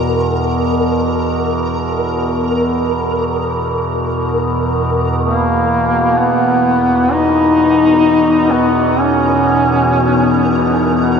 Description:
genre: dark ambient drone.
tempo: free time.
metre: none.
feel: none.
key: unclear.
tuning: A4 = 440 Hz.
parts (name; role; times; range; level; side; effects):
overtone-sweeping drone; drone; 0.0-11.2 s; E2 to B2; -16 LUFS; equal; chorus, built-in reverb.
flickering grainy texture; texture; 0.0-11.2 s; A#4; -22 LUFS; equal; built-in reverb, ensemble chorus, shimmer reverb.
warm duduk; melody; 5.2-11.2 s; A#3 to D#4; -13 LUFS; left 1 dB; shimmer reverb, tape echo.
deep dark ambient pad; sustained chords; 9.2-11.2 s; D#4 to D#5; -24 LUFS; right 2 dB; chorus, built-in reverb, shimmer reverb.
room: wet huge ambient reverb, RT60 8.2 s.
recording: dreamy mix soaked in reverb.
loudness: -12 LUFS.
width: side -6 dB against mid.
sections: 0.0-5.2 A section; 5.2-11.2 B section.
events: fade-in on ambient pad 5.2-11.2; fade-in on synth texture 5.2-11.2.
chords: 0.0 E5; 5.2 B.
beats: free time.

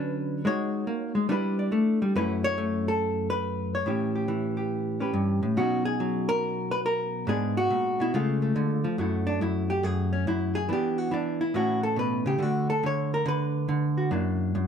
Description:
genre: solo jazz.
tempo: 140 BPM.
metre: 4/4.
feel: swing 67% on 8ths.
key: F# minor.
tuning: A4 = 440 Hz.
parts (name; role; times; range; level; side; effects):
hollow-body jazz guitar; solo; 0.0-14.7 s; F#2 to D5; -24 LUFS; equal; none.
room: moderate stone room reverb, RT60 1.2 s.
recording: band playing live in one room.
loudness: -24 LUFS.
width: side -7 dB against mid.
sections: 0.0-9.0 A section; 9.0-14.7 B section.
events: hollow-body jazz guitar solo 9.0-14.7.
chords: 0.4 G#9sus4; 1.3 G69; 2.1 F#m7; 3.9 A9; 5.6 Bmaj9; 7.3 G#m7b5; 8.1 C#; 9.0 F#m7; 10.7 E5; 11.5 Aadd9; 12.4 D6; 14.1 F#7b13.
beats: 0.01 | 0.44 0.87 1.30 1.72 | 2.15 2.58 3.00 3.43 | 3.86 4.28 4.71 5.14 | 5.57 5.99 6.42 6.85 | 7.27 7.70 8.13 8.55 | 8.98 9.41 9.84 10.27 | 10.69 11.12 11.55 11.97 | 12.40 12.83 13.26 13.69 | 14.11 14.54.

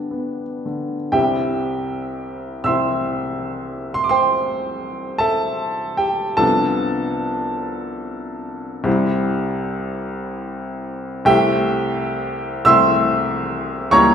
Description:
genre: classical, romantic nocturne for solo piano.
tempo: 38-51 BPM (dotted quarters).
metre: 12/8.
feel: rubato.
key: C major.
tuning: A4 = 441 Hz.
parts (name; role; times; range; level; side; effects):
bright upright piano; solo; 0.0-14.1 s; C2 to E6; -18 LUFS; equal; none.
room: wet recital hall reverb, RT60 1.7 s.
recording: heard from further back in the room.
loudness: -18 LUFS.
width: side -8 dB against mid.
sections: 0.0-1.1 A section; 1.1-14.1 B section.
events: none.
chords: 0.0 G; 1.1 C; 6.4 Bdim/C; 8.9 Am7/C.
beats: | 1.15 2.67 3.99 5.24 | 6.42 7.64 8.87 10.06 | 11.28 12.68 13.96.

